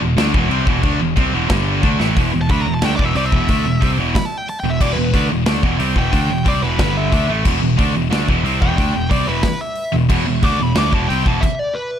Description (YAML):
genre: heavy metal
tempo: 181 BPM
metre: 4/4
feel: straight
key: E minor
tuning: A4 = 437 Hz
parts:
  - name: high-gain distorted guitar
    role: riff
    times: 0.0-11.4 s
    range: E2 to D4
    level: -21 LUFS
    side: right 13 dB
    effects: distortion
  - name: scooped high-gain guitar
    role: riff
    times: 0.0-11.4 s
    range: E2 to D4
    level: -22 LUFS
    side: left 13 dB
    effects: distortion
  - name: picked electric bass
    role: bass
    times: 0.0-11.4 s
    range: E1 to D2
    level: -20 LUFS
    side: equal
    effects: none
  - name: big rock drum kit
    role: drums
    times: 0.2-11.5 s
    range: china cymbal, crash cymbal, hi-hat, kick drum, snare drum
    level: -20 LUFS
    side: equal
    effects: none
  - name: high-gain lead guitar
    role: melody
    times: 2.4-12.0 s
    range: B4 to D6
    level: -24 LUFS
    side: left 1 dB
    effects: distortion, tape echo
room: little or no reverb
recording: dark, warm production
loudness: -14 LUFS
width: side -9 dB against mid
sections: 0.0-2.2 A section; 2.2-12.0 B section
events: drum fill 2.0; lead electric guitar solo 2.2-12.0; stop 11.4-12.0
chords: 0.0 Em; 1.5 G5; 1.8 Asus4; 2.2 Em; 6.8 G5; 7.1 Em